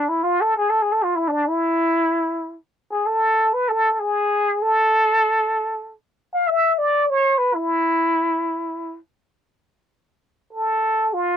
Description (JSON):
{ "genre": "turkish", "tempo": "free time", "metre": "none", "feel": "none", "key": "E makam hicaz", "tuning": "A4 = 441 Hz", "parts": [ { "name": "trumpet with plunger mute", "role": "solo", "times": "0.0-11.4 s", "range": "D4 to F5", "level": "-18 LUFS", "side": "equal", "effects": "none" } ], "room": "little or no reverb", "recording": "dry, close 1970s-style studio recording", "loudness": "-18 LUFS", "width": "side -9 dB against mid", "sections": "0.0-10.5 A section", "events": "none", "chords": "none", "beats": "free time" }